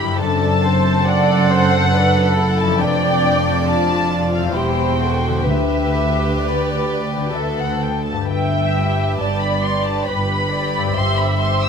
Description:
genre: classical, slow romantic movement for symphony orchestra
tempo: 63-70 BPM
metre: 3/4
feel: rubato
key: G major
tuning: A4 = 440 Hz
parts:
  - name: dark studio violin section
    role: melody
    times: 0.0-11.7 s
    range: D5 to E6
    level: -23 LUFS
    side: left 2 dB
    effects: none
  - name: warm symphonic violin section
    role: second line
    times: 0.0-11.7 s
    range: C4 to D5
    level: -23 LUFS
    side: left 2 dB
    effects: none
  - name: dark symphonic viola section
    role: accompaniment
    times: 0.0-11.7 s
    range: F4 to E5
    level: -23 LUFS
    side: right 2 dB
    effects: none
  - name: concert harp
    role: arpeggios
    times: 0.0-11.7 s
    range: E2 to C5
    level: -25 LUFS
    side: left 9 dB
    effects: none
  - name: dark symphonic double bass section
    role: bass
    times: 0.0-11.7 s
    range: E1 to D2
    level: -23 LUFS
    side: right 3 dB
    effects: none
  - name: rich symphonic cello section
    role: bass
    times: 0.0-11.7 s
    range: D2 to G2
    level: -22 LUFS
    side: right 2 dB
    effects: none
  - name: timpani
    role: percussion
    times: 5.5-6.8 s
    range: D3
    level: -26 LUFS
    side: left 1 dB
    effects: none
room: moderate scoring stage reverb, RT60 2.0 s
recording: none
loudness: -15 LUFS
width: side -6 dB against mid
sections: 0.0-11.7 A section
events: none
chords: 0.2 D7/F#; 2.8 G7/F; 4.6 C/E; 5.5 G/D; 7.3 D; 8.3 G; 11.0 C/G

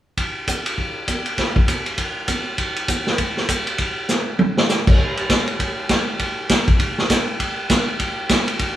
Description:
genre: jazz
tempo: 200 BPM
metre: 4/4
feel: swing 60% on 8ths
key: none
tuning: none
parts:
  - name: vintage drum kit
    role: drums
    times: 0.2-8.7 s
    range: crash cymbal, hi-hat, kick drum, ride cymbal, snare drum, toms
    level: -18 LUFS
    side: equal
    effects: none
room: moderate stone room reverb, RT60 1.1 s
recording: band playing live in one room, small room ambience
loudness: -18 LUFS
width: side -12 dB against mid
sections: 0.2-5.0 A section; 5.0-8.8 B section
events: drum fill 4.1-4.7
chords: none

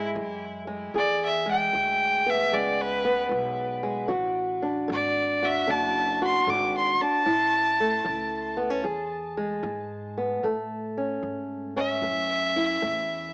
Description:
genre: acoustic country blues, solo or duo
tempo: 76 BPM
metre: 4/4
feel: swing 66% on 8ths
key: A major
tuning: A4 = 439 Hz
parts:
  - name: clear fiddle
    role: melody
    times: 0.0-13.3 s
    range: B4 to D6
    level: -28 LUFS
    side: equal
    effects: tape echo
  - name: fingerpicked old ladder-braced acoustic guitar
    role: accompaniment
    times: 0.0-13.3 s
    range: E2 to G#4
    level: -30 LUFS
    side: equal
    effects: none
  - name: upright bass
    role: bass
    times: 0.0-13.3 s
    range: F#1 to A2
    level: -42 LUFS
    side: equal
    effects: none
room: wet spring reverb, RT60 1.1 s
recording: cassette tape, small speaker sound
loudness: -26 LUFS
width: mono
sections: 0.0-10.4 A section; 10.4-13.3 B section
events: fiddle solo 0.0-10.4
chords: 0.0 E; 4.1 D; 7.3 A; 8.8 E; 10.4 A

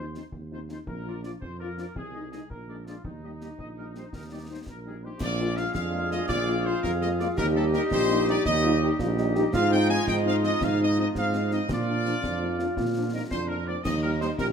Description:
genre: military-style march for wind band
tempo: 111 BPM (dotted quarters)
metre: 6/8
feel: straight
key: Eb major, Bb major from 5.2 s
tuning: A4 = 440 Hz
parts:
  - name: mellow trumpet section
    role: melody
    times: 0.0-14.5 s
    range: Eb4 to Ab5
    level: -32 LUFS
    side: left 1 dB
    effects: none
  - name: clear woodwind section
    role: second line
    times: 0.0-14.5 s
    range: F4 to F5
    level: -35 LUFS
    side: left 1 dB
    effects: none
  - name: mellow French horn section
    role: accompaniment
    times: 0.0-14.3 s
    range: F3 to F4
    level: -34 LUFS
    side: left 4 dB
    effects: none
  - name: mellow tuba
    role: bass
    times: 0.0-14.5 s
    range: Bb1 to Bb2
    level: -29 LUFS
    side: right 2 dB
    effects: none
  - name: concert snare drum, concert bass drum and clash cymbals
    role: drums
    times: 0.1-14.5 s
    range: none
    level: -36 LUFS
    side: left 1 dB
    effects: none
  - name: warm trombone section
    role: sustained chords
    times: 5.2-14.3 s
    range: F3 to F4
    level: -34 LUFS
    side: right 2 dB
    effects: none
  - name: warm euphonium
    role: second line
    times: 5.8-14.5 s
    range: C4 to G4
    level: -30 LUFS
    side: equal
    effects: none
room: moderate large studio reverb, RT60 1.1 s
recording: minimal, uncompressed stereo recording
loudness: -23 LUFS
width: side -7 dB against mid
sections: 0.0-5.2 A section; 5.2-13.9 B section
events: none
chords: 0.0 Ebsus2; 0.9 Bb; 2.0 Ab/C; 2.5 Bb7; 3.0 Eb; 5.2 Bb7; 7.4 Eb; 9.5 Fm7/Ab; 11.7 Bb; 13.9 Eb

